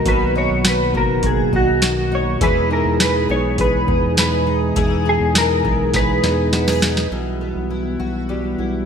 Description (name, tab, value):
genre	dream pop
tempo	102 BPM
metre	4/4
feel	straight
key	unclear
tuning	A4 = 440 Hz
part	clean electric guitar	melody	0.0-6.8 s	F#4 to C#5	-20 LUFS	equal	analog chorus, digital delay
part	mellow tonewheel organ	sustained chords	0.0-8.9 s	B2 to G#4	-22 LUFS	right 2 dB	slow rotary speaker
part	fingerpicked twelve-string acoustic guitar	arpeggios	0.0-8.9 s	B2 to G#4	-23 LUFS	left 5 dB	analog chorus, digital delay
part	round analog bass	bass	0.1-8.9 s	F#1 to E2	-24 LUFS	right 1 dB	none
part	booming analog drum machine	drums	0.1-7.1 s	hi-hat, kick drum, snare drum, tambourine	-20 LUFS	right 1 dB	gated reverb
room	moderate lush hall reverb, RT60 2.4 s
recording	bright 1980s-style digital production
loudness	-15 LUFS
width	side -7 dB against mid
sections	0.0-7.1 A section; 7.1-8.9 B section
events	drum fill 5.9-7.1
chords	0.0 Bmaj7; 2.4 Emaj7; 7.1 Emadd9/B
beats	| 0.06 0.65 1.24 1.82 | 2.41 3.00 3.59 4.18 | 4.76 5.35 5.94 6.53 | 7.12 7.71 8.29